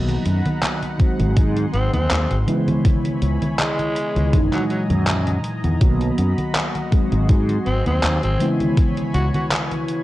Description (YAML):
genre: vaporwave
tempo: 81 BPM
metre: 4/4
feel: swing 54% on 16ths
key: B major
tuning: A4 = 440 Hz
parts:
  - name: mellow FM electric piano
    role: accompaniment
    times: 0.0-10.0 s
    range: A#2 to F#4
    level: -23 LUFS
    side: equal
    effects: phaser, analog chorus, analog delay
  - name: lush unison pad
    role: sustained chords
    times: 0.0-10.0 s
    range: E3 to B#5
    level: -31 LUFS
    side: equal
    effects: chorus
  - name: fretless electric bass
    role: bass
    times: 0.0-9.3 s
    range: F#1 to G#2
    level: -20 LUFS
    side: equal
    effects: analog chorus
  - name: detuned 8-bit digital drum machine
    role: drums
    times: 0.1-10.0 s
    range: congas, handclaps, hi-hat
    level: -24 LUFS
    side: equal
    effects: gated reverb
  - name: electronic kick drum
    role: drums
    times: 1.0-8.9 s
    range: none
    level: -16 LUFS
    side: equal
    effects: overdrive
  - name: raspy alto saxophone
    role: melody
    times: 1.7-9.5 s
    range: F#3 to F#4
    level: -27 LUFS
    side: equal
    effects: vintage 12-bit sampler grit, tape echo
room: light reverb, digital ambience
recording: cassette tape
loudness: -17 LUFS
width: side -16 dB against mid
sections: 0.0-10.0 A section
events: none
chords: 0.0 Bmaj7; 1.0 G#7; 2.5 C#m7; 4.3 F#13; 5.8 Bmaj7; 6.9 G#7; 8.4 C#m7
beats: 0.63 1.37 2.11 | 2.85 3.59 4.33 5.07 | 5.81 6.55 7.29 8.03 | 8.78 9.52